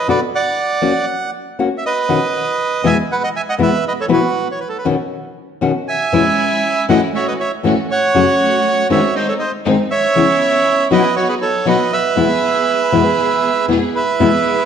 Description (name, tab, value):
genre	tango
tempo	119 BPM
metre	4/4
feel	rubato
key	E major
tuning	A4 = 439 Hz
part	bandoneon	melody	0.0-14.7 s	F#4 to G#5	-16 LUFS	right 4 dB	none
part	nylon-string guitar	accompaniment	0.1-14.3 s	E2 to B4	-17 LUFS	left 5 dB	none
part	warm symphonic string section	stabs	6.1-14.7 s	G#3 to G#4	-22 LUFS	right 2 dB	none
room	moderate scoring stage reverb, RT60 1.8 s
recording	nothing above 10.9 kHz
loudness	-13 LUFS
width	side -8 dB against mid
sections	0.0-14.2 A section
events	none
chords	0.1 Bm; 1.1 F#; 2.1 Badd9; 3.1 E; 4.1 Badd9; 6.1 E6; 7.1 A6; 8.1 F#m; 9.2 G#; 10.2 C#m7; 11.2 B; 12.2 E